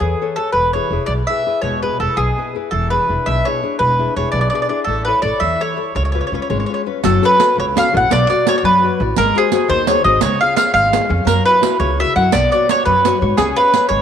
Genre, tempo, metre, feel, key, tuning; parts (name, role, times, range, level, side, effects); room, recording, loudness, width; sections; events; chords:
italian folk, Italian serenade; 112 BPM (dotted quarters); 6/8; straight; F# harmonic minor from 7.0 s; A4 = 440 Hz
mandolin; melody; 0.0-14.0 s; G#4 to F#5; -15 LUFS; right 1 dB
nylon-string guitar; accompaniment; 0.0-14.0 s; B2 to E#5; -21 LUFS; left 9 dB
upright bass; bass; 0.0-14.0 s; E1 to G#2; -20 LUFS; right 1 dB
riq; percussion; 7.0-13.9 s; -22 LUFS; right 15 dB
moderate plate reverb, RT60 3.1 s; 1960s-style stereo with parts hard left and right; -13 LUFS; side -8 dB against mid
0.0-7.0 A section; 7.0-14.0 B section
0.0 Aadd9; 0.5 E; 2.7 E7; 4.9 A; 6.0 C#7; 7.0 F#m; 8.1 Bm; 9.2 G#7; 10.2 C#; 11.3 F#7; 12.3 Bsus2; 13.4 C#7